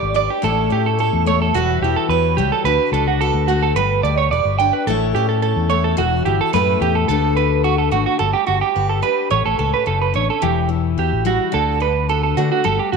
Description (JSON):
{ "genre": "highlife", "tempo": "108 BPM", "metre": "4/4", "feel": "straight", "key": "D major", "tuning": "A4 = 441 Hz", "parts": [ { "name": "picked steel-string acoustic guitar", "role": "accompaniment", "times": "0.0-13.0 s", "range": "A2 to C#5", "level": "-22 LUFS", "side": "left 16 dB", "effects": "none" }, { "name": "clean electric guitar", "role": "arpeggios", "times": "0.0-13.0 s", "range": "F#4 to G5", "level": "-18 LUFS", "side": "right 10 dB", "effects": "analog chorus, slapback echo" }, { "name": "fingered electric bass", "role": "bass", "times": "0.0-13.0 s", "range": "E1 to D3", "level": "-20 LUFS", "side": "left 2 dB", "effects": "none" } ], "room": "moderate plate reverb, RT60 3.0 s", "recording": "1960s-style stereo with parts hard left and right", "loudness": "-15 LUFS", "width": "side -5 dB against mid", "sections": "0.0-7.1 A section; 7.1-13.0 B section", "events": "none", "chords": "0.4 A; 1.5 Emadd9; 2.6 D; 3.8 G; 4.9 A; 6.0 Emadd9; 6.5 Aadd9; 7.1 D; 8.2 G; 9.3 A; 10.4 Emadd9; 11.5 D" }